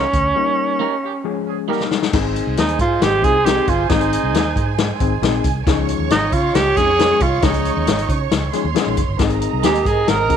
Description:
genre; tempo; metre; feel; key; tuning
uptempo 1960s-style soul; 136 BPM; 4/4; straight; Ab major; A4 = 440 Hz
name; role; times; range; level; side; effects
breathy tenor saxophone; melody; 0.0-10.4 s; Db4 to Bb4; -18 LUFS; right 2 dB; none
clean electric guitar; stabs; 0.0-1.8, 9.6-9.8 s; G3 to Bb4; -25 LUFS; right 14 dB; none
vintage muted fingered electric bass; bass; 0.0-10.4 s; Gb1 to Db3; -23 LUFS; right 1 dB; none
swinging big-band drum kit; drums; 0.1-10.4 s; crash cymbal, hi-hat, kick drum, snare drum; -20 LUFS; left 3 dB; none
overdriven reed electric piano; accompaniment; 0.4-10.4 s; F3 to Bb4; -24 LUFS; left 13 dB; none
mellow horn section; second line; 1.0-10.4 s; Eb3 to Eb5; -28 LUFS; right 15 dB; none
warm symphonic string section; second line; 2.1-10.4 s; Ab4 to Db6; -26 LUFS; right 14 dB; none
room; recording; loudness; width
light reverb, studio reverb; 1960s-style stereo with parts hard left and right; -15 LUFS; side -8 dB against mid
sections
0.0-2.1 A section; 2.1-10.4 B section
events
break 0.4-2.1; band accent 0.4-2.1; drum fill 1.7-2.1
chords
0.4 Eb; 1.2 Db; 1.7 Eb; 2.1 Ab; 5.7 Dbadd9; 9.2 Ab

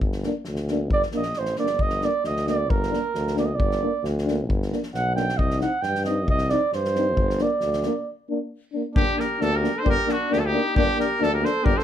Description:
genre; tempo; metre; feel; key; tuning
balkan folk, Balkan brass band; 134 BPM; 2/4; straight; G harmonic minor; A4 = 440 Hz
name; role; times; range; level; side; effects
clear tuba; bass; 0.0-11.8 s; G1 to G2; -27 LUFS; left 1 dB; none
natural country drum kit; percussion; 0.0-11.8 s; kick drum, snare drum; -27 LUFS; left 1 dB; none
mellow euphonium; accompaniment; 0.2-11.7 s; Bb3 to C4; -30 LUFS; right 5 dB; none
mellow euphonium; accompaniment; 0.3-11.7 s; D4 to Eb4; -28 LUFS; left 7 dB; none
mellow flugelhorn; second line; 0.9-11.8 s; D4 to G5; -26 LUFS; right 4 dB; none
clear trumpet; melody; 9.0-11.8 s; F#4 to C5; -24 LUFS; left 1 dB; none
room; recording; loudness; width
moderate studio reverb, RT60 0.6 s; dark, warm production; -21 LUFS; side -10 dB against mid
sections
0.0-9.0 A section; 9.0-11.8 B section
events
flugelhorn solo 0.0-9.0; break 8.1-9.0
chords
0.0 Gm; 5.4 Cm; 7.2 Gm

